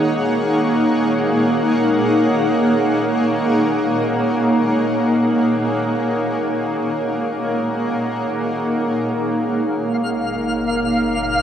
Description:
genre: ambient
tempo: free time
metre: none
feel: none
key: F# major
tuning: A4 = 441 Hz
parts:
  - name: granular cloud pad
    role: sustained chords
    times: 0.0-11.4 s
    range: A#3 to F#5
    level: -16 LUFS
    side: equal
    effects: built-in reverb
  - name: deep rumbling drone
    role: bass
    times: 9.4-11.4 s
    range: F#1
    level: -36 LUFS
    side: left 1 dB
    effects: built-in reverb
  - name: twinkling granular texture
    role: texture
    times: 10.0-11.4 s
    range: E#5 to E#6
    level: -23 LUFS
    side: equal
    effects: built-in reverb
room: wet cathedral reverb, RT60 5.1 s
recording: in a vast, echoing space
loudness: -16 LUFS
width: side -9 dB against mid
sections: 0.0-9.5 A section; 9.5-11.4 B section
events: none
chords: 0.0 F#; 9.5 F#maj7

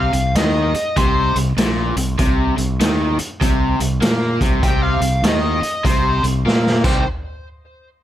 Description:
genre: blues rock power trio and southern rock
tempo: 99 BPM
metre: 4/4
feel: swing 64% on 8ths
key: C minor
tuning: A4 = 438 Hz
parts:
  - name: fuzz lead guitar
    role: melody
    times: 0.0-7.0 s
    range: C5 to G5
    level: -22 LUFS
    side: equal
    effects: wah, distortion, plate reverb, tape echo
  - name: overdriven electric guitar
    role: riff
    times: 0.0-7.0 s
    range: Bb2 to G4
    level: -21 LUFS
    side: left 1 dB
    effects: none
  - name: growling fingered electric bass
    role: bass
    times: 0.0-7.0 s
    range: Bb1 to Bb2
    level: -20 LUFS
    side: equal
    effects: overdrive
  - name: raw garage drum kit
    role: drums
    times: 0.1-6.9 s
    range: crash cymbal, hi-hat, kick drum, snare drum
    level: -20 LUFS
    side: equal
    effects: none
room: light reverb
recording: none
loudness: -15 LUFS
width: side -12 dB against mid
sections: 0.0-7.1 A section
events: drum fill 6.5-7.1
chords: 0.0 Cm; 7.1 N.C.

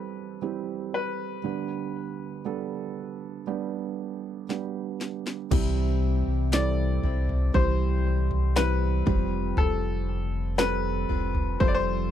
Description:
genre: pop ballad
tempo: 59 BPM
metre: 4/4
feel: straight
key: C major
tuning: A4 = 437 Hz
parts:
  - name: clear concert grand piano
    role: melody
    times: 0.0-12.1 s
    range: A4 to D5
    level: -31 LUFS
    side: left 5 dB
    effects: none
  - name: felt-muted upright piano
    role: accompaniment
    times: 0.0-12.1 s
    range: D2 to A4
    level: -31 LUFS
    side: right 11 dB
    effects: none
  - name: house drum kit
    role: drums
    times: 4.5-11.8 s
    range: crash cymbal, kick drum, snare drum, toms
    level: -27 LUFS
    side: equal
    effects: none
  - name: picked steel-string acoustic guitar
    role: arpeggios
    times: 5.5-12.1 s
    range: C3 to F4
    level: -35 LUFS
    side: left 17 dB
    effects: none
  - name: sub bass with octave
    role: bass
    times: 5.5-12.1 s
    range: F1 to C2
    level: -26 LUFS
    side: left 1 dB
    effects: none
room: little or no reverb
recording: dry, close 1970s-style studio recording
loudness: -25 LUFS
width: side -10 dB against mid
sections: 0.0-5.5 A section; 5.5-12.1 B section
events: drum fill 4.5-5.5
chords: 0.0 C/E; 1.4 G/D; 5.5 C; 9.1 Fsus2

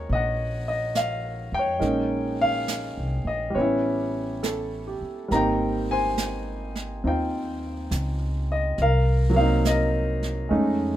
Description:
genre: jazz ballad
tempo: 69 BPM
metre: 4/4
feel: swing 66% on 8ths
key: unclear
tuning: A4 = 437 Hz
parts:
  - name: warm concert grand piano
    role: accompaniment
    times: 0.0-11.0 s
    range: Eb3 to Bb5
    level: -24 LUFS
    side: equal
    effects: none
  - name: upright bass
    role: bass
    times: 0.0-11.0 s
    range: Ab1 to F2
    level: -27 LUFS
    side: equal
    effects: none
  - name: jazz brush drum kit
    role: drums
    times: 0.1-11.0 s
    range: brushed snare drum, hi-hat, snare drum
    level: -34 LUFS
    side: right 4 dB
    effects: none
room: light reverb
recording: minimal, uncompressed stereo recording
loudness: -22 LUFS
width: side -13 dB against mid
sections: 0.0-11.0 A section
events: none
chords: 0.0 Ebm11; 1.8 Bbm11; 3.5 A9; 5.3 Abmaj9; 8.8 Cm7b5

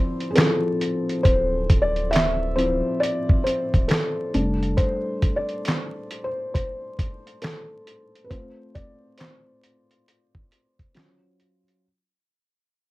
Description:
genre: lo-fi hip hop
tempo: 68 BPM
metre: 4/4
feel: swing 63% on 16ths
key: D minor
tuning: A4 = 440 Hz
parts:
  - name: felt-muted upright piano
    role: accompaniment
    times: 0.0-11.9 s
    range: F3 to E5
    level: -24 LUFS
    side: left 1 dB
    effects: cassette tape
  - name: dusty soul sampler-style drum kit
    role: drums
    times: 0.2-11.8 s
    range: handclaps, hi-hat, kick drum, snare drum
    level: -21 LUFS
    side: equal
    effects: none
  - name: soft dub sub bass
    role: bass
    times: 1.3-4.8 s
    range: D1 to F1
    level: -27 LUFS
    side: equal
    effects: none
room: moderate small room reverb, RT60 0.5 s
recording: vinyl crackle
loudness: -20 LUFS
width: side -19 dB against mid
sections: 0.0-11.8 A section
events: fade-out 0.0-11.8; felt piano solo 0.0-11.8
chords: 0.0 Dm9; 4.3 F69 (rootless); 8.3 Amadd11; 10.9 C#add11/F#

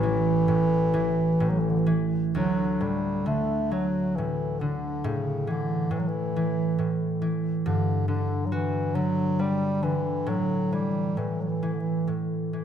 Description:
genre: celtic folk, Celtic slow air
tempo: 68 BPM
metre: 3/4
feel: uneven beats, rubato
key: D major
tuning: A4 = 440 Hz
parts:
  - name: warm bass clarinet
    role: melody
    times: 0.0-12.1 s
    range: C#3 to A3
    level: -27 LUFS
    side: right 1 dB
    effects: none
  - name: concert harp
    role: accompaniment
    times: 0.0-12.6 s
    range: A1 to F#4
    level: -26 LUFS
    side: equal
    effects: none
room: moderate concert hall reverb, RT60 2.0 s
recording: minimal, uncompressed stereo recording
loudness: -24 LUFS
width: side -9 dB against mid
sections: 0.0-2.3 A section; 2.3-12.6 B section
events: none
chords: 0.0 A5; 2.3 D; 5.1 A5; 7.7 G5; 10.3 A5

